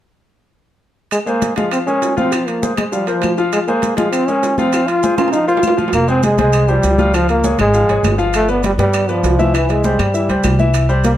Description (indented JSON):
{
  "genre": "latin, salsa",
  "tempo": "200 BPM",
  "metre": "4/4",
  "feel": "straight",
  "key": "F minor, F harmonic minor from 5.9 s",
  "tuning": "A4 = 439 Hz",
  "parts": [
    { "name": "clear trombone", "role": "melody", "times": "1.1-11.1 s", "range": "E3 to F4", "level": "-16 LUFS", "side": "equal", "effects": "plate reverb" },
    { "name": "claves", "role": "percussion", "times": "1.1-10.9 s", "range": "none", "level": "-31 LUFS", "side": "left 3 dB", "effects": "none" },
    { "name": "congas", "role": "percussion", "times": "1.1-11.2 s", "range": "none", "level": "-22 LUFS", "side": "left 2 dB", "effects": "none" },
    { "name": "maracas", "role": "percussion", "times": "1.1-11.2 s", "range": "none", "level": "-32 LUFS", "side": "right 6 dB", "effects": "none" },
    { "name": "timbales", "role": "percussion", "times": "1.1-11.2 s", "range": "none", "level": "-24 LUFS", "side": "right 7 dB", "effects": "none" },
    { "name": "bright concert grand piano", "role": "accompaniment", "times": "1.3-11.1 s", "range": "E3 to F5", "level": "-20 LUFS", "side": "left 2 dB", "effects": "none" },
    { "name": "upright bass", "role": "bass", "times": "5.9-11.1 s", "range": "F1 to G2", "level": "-17 LUFS", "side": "equal", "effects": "none" }
  ],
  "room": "moderate studio reverb, RT60 0.5 s",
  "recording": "none",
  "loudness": "-13 LUFS",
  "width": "side -12 dB against mid",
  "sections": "1.1-5.9 A section; 5.9-11.2 B section",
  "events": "drum fill 5.2-5.9",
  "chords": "1.1 Fm; 1.7 Bbm7; 2.3 Fm; 2.9 C7sus4; 3.5 Fm; 4.1 Bbm7; 4.7 Fm; 5.3 C7sus4; 5.9 Fmadd9; 7.1 Db; 8.3 G7; 9.5 C",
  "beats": "| 1.12 1.42 1.72 2.02 | 2.32 2.62 2.92 3.23 | 3.53 3.83 4.13 4.43 | 4.73 5.03 5.33 5.63 | 5.93 6.23 6.53 6.83 | 7.13 7.43 7.74 8.04 | 8.34 8.64 8.94 9.24 | 9.54 9.84 10.14 10.44 | 10.74 11.04"
}